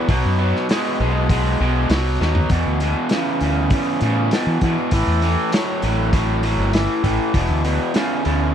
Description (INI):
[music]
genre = blues rock power trio and southern rock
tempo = 99 BPM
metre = 4/4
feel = straight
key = unclear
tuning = A4 = 442 Hz
[part]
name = raw garage guitar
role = riff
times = 0.0-8.5 s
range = E2 to G#3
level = -20 LUFS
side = equal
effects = overdrive
[part]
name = mellow fretless electric bass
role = bass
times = 0.1-8.5 s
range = E1 to E3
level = -20 LUFS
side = equal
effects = none
[part]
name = vintage drum kit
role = drums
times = 0.1-8.4 s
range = hi-hat, kick drum, snare drum, toms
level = -22 LUFS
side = equal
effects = none
[sound]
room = little or no reverb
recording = dry, close 1970s-style studio recording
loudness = -16 LUFS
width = side -9 dB against mid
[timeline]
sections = 0.0-2.5 A section; 2.5-8.5 B section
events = drum fill 2.2-2.5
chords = 0.1 B5; 2.5 E5; 4.9 A5; 7.3 E5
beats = | 0.09 0.69 1.30 1.90 | 2.50 3.11 3.71 4.32 | 4.92 5.53 6.14 6.74 | 7.35 7.96